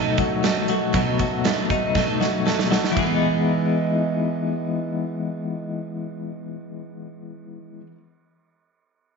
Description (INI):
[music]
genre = jangly indie pop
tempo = 118 BPM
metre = 4/4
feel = straight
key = E major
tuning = A4 = 442 Hz
[part]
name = picked twelve-string acoustic guitar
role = accompaniment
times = 0.0-8.0 s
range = B2 to D#4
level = -26 LUFS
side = right 7 dB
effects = none
[part]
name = twelve-string electric guitar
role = arpeggios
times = 0.0-8.0 s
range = B2 to D#4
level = -24 LUFS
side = left 8 dB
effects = tremolo, slapback echo
[part]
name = big rock drum kit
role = drums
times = 0.2-3.1 s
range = hi-hat, kick drum, ride cymbal, snare drum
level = -26 LUFS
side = right 5 dB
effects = none
[sound]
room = wet echo chamber reverb, RT60 1.3 s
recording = 1960s-style stereo with parts hard left and right, nothing above 7.6 kHz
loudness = -20 LUFS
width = side -4 dB against mid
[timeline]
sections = 0.0-3.0 A section; 3.0-7.0 B section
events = drum fill 2.0-3.0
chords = 0.0 B7; 3.0 Emaj7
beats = 0.43 | 0.94 1.45 1.95 2.46 | 2.97 3.48 3.98 4.49 | 5.00 5.51 6.01 6.52